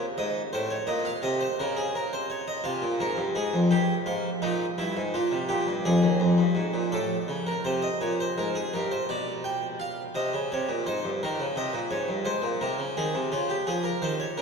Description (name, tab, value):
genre	classical, baroque-style two-part invention for harpsichord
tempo	56 BPM (dotted quarters)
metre	6/8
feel	straight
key	unclear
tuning	A4 = 441 Hz
part	harpsichord	solo	0.0-14.4 s	Eb2 to G5	-25 LUFS	equal	none
room	wet cathedral reverb, RT60 6.7 s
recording	recorded in a church or concert hall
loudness	-25 LUFS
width	side -5 dB against mid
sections	0.0-6.9 A section; 6.9-14.4 B section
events	none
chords	0.0 Ab5; 0.5 F7/A; 1.6 Bbm/Db; 2.6 Fm; 3.7 Fm11/G; 4.8 C7/G; 5.9 Fm; 6.9 Adim; 8.0 Bbm; 9.1 G7/B; 10.1 Cm; 12.2 Ab; 13.3 Db